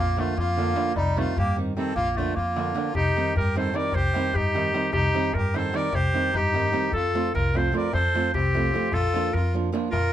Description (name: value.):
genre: balkan folk, Balkan wedding band.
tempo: 302 BPM (eighths).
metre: 5/8.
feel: straight.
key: unclear.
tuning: A4 = 441 Hz.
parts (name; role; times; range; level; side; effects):
bright clarinet; melody; 0.0-10.1 s; G3 to D5; -26 LUFS; equal; none.
accordion; second line; 0.0-10.1 s; C4 to Bb4; -31 LUFS; left 2 dB; none.
upright bass; bass; 0.0-10.1 s; Bb1 to G2; -28 LUFS; equal; none.
darbuka; percussion; 0.1-10.1 s; none; -29 LUFS; left 1 dB; none.
nylon-string guitar; accompaniment; 0.2-9.9 s; D3 to F4; -29 LUFS; right 5 dB; none.
room: moderate studio reverb, RT60 0.6 s.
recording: none.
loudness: -22 LUFS.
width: side -11 dB against mid.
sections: 0.0-2.9 A section; 2.9-10.1 B section.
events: drum fill 2.0-2.9.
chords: 0.0 Bb; 1.0 Cm; 2.0 Bb; 2.9 Cm; 6.9 F; 8.9 Bb.